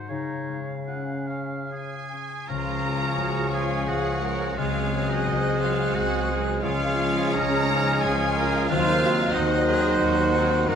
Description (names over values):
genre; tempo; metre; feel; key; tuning
classical, slow romantic movement for symphony orchestra; 69-92 BPM; 3/4; rubato; Db major; A4 = 436 Hz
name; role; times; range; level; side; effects
bright silver concert flute; second line; 0.0-10.8 s; F5 to Gb6; -34 LUFS; left 1 dB; none
warm oboe; second line; 0.0-10.8 s; Eb4 to Gb5; -32 LUFS; right 2 dB; none
concert harp; arpeggios; 0.0-10.8 s; Gb2 to C6; -30 LUFS; left 8 dB; none
clear clarinet; second line; 0.1-10.8 s; Db4 to Db5; -34 LUFS; equal; none
warm bassoon; accompaniment; 0.1-10.8 s; Db3 to Ab3; -33 LUFS; right 2 dB; none
warm symphonic violin section; melody; 1.7-10.8 s; Eb5 to Bb5; -31 LUFS; left 2 dB; none
mellow French horn section; sustained chords; 2.5-10.8 s; F3 to Eb4; -32 LUFS; left 2 dB; none
warm trumpet; stabs; 2.5-10.8 s; Ab4 to C5; -29 LUFS; right 3 dB; none
rich symphonic cello section; bass; 2.5-10.8 s; Db4 to Bb4; -32 LUFS; right 2 dB; none
rich symphonic double bass section; bass; 2.5-10.8 s; Db2 to Gb2; -30 LUFS; right 4 dB; none
rich chamber viola section; accompaniment; 2.8-10.7 s; F3 to Ab3; -32 LUFS; equal; none
warm symphonic violin section; second line; 2.9-10.7 s; C4 to Ab4; -36 LUFS; left 1 dB; none
room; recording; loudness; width
moderate scoring stage reverb, RT60 2.1 s; none; -22 LUFS; side -8 dB against mid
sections
0.0-2.5 A section; 2.5-10.8 B section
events
none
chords
0.1 Db; 4.6 Ab7/Db; 6.6 Db; 8.7 Cdim/Eb